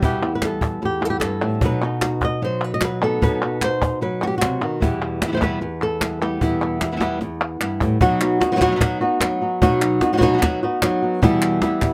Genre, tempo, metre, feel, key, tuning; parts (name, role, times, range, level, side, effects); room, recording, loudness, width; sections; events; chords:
flamenco; 150 BPM; 4/4; straight; A4 = 436 Hz
flamenco guitar; melody; 0.0-11.9 s; E2 to D#5; -23 LUFS; equal
flamenco guitar; stabs; 0.0-11.9 s; E2 to F#4; -28 LUFS; equal
cajon; percussion; 0.0-11.9 s; -25 LUFS; equal
palmas hand claps; percussion; 0.2-11.9 s; -28 LUFS; equal
light reverb; close, detailed microphones; -20 LUFS; mono
0.0-8.0 A section; 8.0-11.9 B section
drum fill 7.0-8.0
0.0 Em; 1.6 B; 4.8 Em; 8.0 B; 11.2 Em